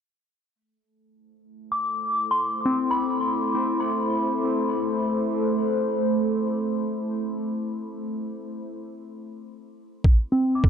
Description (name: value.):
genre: ambient dub.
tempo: free time.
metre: none.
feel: none.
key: A minor.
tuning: A4 = 439 Hz.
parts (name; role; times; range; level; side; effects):
warbly tape-like pad; sustained chords; 2.0-8.9 s; A3 to C5; -26 LUFS; equal; chorus, built-in reverb, phaser.
soft synth bell; arpeggios; 1.7-10.7 s; C4 to D6; -26 LUFS; left 1 dB; chorus, low-pass filter, tape echo.
electronic kick drum; drums; 10.0-10.7 s; none; -16 LUFS; equal; none.
room: moderate echo chamber reverb, RT60 2.1 s.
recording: none.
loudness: -22 LUFS.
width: side -8 dB against mid.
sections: 0.5-10.0 A section.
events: fade-in on ambient pad 0.5-10.0; filter sweep on synth bell 0.5-10.0; break 8.9-10.0.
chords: 0.5 Am; 10.0 Csus2.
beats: free time.